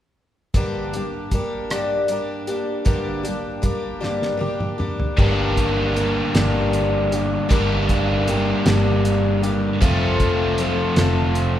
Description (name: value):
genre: folk rock and heartland rock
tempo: 52 BPM (dotted quarters)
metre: 6/8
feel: straight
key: G minor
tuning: A4 = 443 Hz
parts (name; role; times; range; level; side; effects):
- picked twelve-string acoustic guitar; accompaniment; 0.5-11.6 s; G2 to A4; -23 LUFS; left 2 dB; none
- cloth-damped thuddy drum kit; drums; 0.5-11.5 s; crash cymbal, hi-hat, kick drum, rim click, snare drum, toms; -24 LUFS; equal; none
- biting overdriven guitar; riff; 5.2-11.6 s; F2 to G4; -22 LUFS; equal; none
- hollow-body short-scale picked electric bass; bass; 5.2-11.6 s; F1 to G1; -23 LUFS; equal; none
room: wet church reverb, RT60 2.5 s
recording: recorded in a church or concert hall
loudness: -18 LUFS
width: side -11 dB against mid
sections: 0.6-5.2 A section; 5.2-11.6 B section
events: drum fill 4.0-5.2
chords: 0.6 Gm; 9.8 F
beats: | 0.55 1.71 | 2.87 4.03 | 5.19 6.35 | 7.51 8.66 | 9.82 10.97